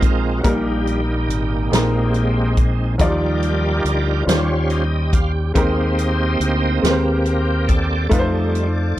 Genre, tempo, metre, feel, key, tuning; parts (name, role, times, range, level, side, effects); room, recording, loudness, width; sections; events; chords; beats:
slow gospel; 47 BPM (dotted quarters); 6/8; straight; Eb major; A4 = 441 Hz
clear baby grand piano; accompaniment; 0.0-9.0 s; Bb2 to D5; -22 LUFS; left 1 dB
bright tonewheel organ; sustained chords; 0.0-9.0 s; G3 to F5; -22 LUFS; right 2 dB; fast rotary speaker, overdrive, chorus vibrato
fingered electric bass; bass; 0.0-9.0 s; Ab1 to F2; -20 LUFS; equal
swinging big-band drum kit; drums; 0.0-8.7 s; hi-hat, kick drum, snare drum; -20 LUFS; equal
little or no reverb; -16 LUFS; side -14 dB against mid
0.0-9.0 A section
tonewheel organ solo 0.0-9.0
0.4 Eb/Bb; 1.7 Bb9sus4; 3.0 Ebmaj9; 4.3 Eb13; 5.6 Abmaj9; 8.1 F7
| 0.45 1.72 | 3.00 4.28 | 5.55 6.83 | 8.11